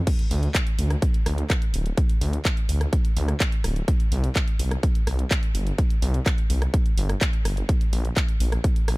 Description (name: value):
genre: EDM, festival progressive house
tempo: 126 BPM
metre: 4/4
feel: straight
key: unclear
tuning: A4 = 436 Hz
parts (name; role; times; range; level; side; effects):
- electronic kick drum; drums; 0.1-8.7 s; none; -22 LUFS; equal; none
- pop drum kit; drums; 0.1-9.0 s; crash cymbal, handclaps, hi-hat, rim click; -30 LUFS; equal; none
- detuned saw bass; bass; 0.3-9.0 s; D1 to D2; -23 LUFS; equal; sidechain pumping
room: digital ambience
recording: dark, warm production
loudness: -21 LUFS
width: side -23 dB against mid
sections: 0.0-9.0 A section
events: none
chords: none